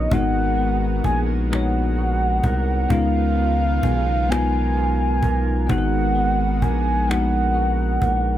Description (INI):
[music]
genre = slow six-eight R&B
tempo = 43 BPM (dotted quarters)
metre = 6/8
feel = straight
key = G# dorian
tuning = A4 = 441 Hz
[part]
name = mellow horn-like synth lead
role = melody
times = 0.0-8.4 s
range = D#5 to G#5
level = -24 LUFS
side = equal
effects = chorus, plate reverb
[part]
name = electric guitar through a small old amp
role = second line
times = 0.0-8.4 s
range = C#3 to C#5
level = -30 LUFS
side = right 5 dB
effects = plate reverb
[part]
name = bell-like tine electric piano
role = accompaniment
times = 0.0-8.4 s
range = G#3 to C#5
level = -25 LUFS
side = left 5 dB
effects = analog chorus, plate reverb
[part]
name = lush unison pad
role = sustained chords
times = 0.0-8.4 s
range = D#3 to A#4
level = -31 LUFS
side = right 3 dB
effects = chorus, plate reverb
[part]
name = rubbery square bass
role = bass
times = 0.0-8.4 s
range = G#1 to C#2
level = -21 LUFS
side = equal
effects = none
[part]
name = cajon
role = drums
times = 0.1-8.2 s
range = none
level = -24 LUFS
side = equal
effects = none
[sound]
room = light reverb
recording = none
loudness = -18 LUFS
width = side -12 dB against mid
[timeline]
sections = 0.0-8.4 A section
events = none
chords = 0.1 G#m9; 2.9 C#13; 5.7 G#m9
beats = | 0.11 1.51 | 2.90 4.30 | 5.69 7.09